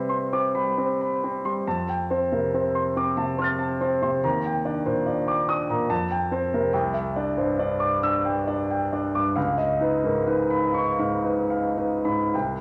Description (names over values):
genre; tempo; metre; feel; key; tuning
classical, impressionist solo piano; 52-73 BPM; 3/4; rubato; unclear; A4 = 444 Hz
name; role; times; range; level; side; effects
warm concert grand piano; solo; 0.0-12.6 s; C2 to A6; -24 LUFS; equal; none
room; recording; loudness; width
wet recital hall reverb, RT60 1.3 s; none; -25 LUFS; mono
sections
0.0-12.6 A section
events
none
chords
0.0 Cmaj7; 1.7 Fadd9; 4.2 Ebmaj7; 5.9 Fadd9; 6.7 Cadd9; 9.4 Db9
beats
0.77 | 1.66 2.53 3.39 | 4.24 5.08 5.90 | 6.73 7.59 8.47 | 9.36 10.28 11.25 | 12.33